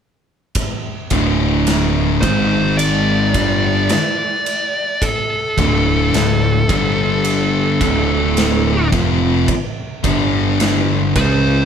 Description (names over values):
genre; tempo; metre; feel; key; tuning
stoner and doom metal; 54 BPM; 4/4; straight; D minor; A4 = 436 Hz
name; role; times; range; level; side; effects
big rock drum kit; drums; 0.6-11.4 s; kick drum, ride cymbal, snare drum; -22 LUFS; right 1 dB; none
thick fuzz guitar; riff; 1.1-11.7 s; D2 to C#4; -18 LUFS; left 7 dB; distortion
thick fuzz guitar; riff; 1.1-11.7 s; D2 to C#4; -20 LUFS; right 7 dB; distortion
fuzz picked electric bass; bass; 1.1-11.7 s; D1 to C#2; -20 LUFS; equal; overdrive
fuzz lead guitar; melody; 2.2-11.7 s; A4 to D5; -19 LUFS; equal; distortion
room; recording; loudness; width
light reverb; band playing live in one room; -14 LUFS; side -7 dB against mid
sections
0.6-11.7 A section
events
none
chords
0.6 D5; 2.2 G#5; 3.4 D5; 6.7 G5; 7.8 Dm; 10.0 G5